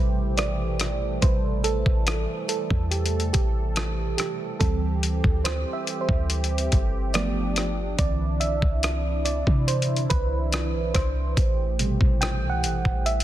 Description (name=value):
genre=contemporary R&B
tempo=71 BPM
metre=4/4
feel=straight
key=A minor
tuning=A4 = 440 Hz
part: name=mellow FM electric piano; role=accompaniment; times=0.0-13.2 s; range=B2 to G5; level=-28 LUFS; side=right 4 dB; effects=chorus
part: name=warm analog pad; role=sustained chords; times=0.0-13.2 s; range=E3 to A4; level=-33 LUFS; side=equal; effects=chorus
part: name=clean 808-style bass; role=bass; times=0.0-13.2 s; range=G1 to C3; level=-26 LUFS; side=equal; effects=none
part: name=dusty soul sampler-style drum kit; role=drums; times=0.4-13.2 s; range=hi-hat, kick drum, rim click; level=-25 LUFS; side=equal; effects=soft clipping on snare
room=digital ambience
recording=dense, heavily limited modern master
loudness=-22 LUFS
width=side -13 dB against mid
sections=0.0-13.2 A section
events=FM electric piano solo 0.0-13.2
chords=0.0 Am7; 4.6 D9sus4; 7.1 G7; 8.0 Cmaj7; 11.4 Am7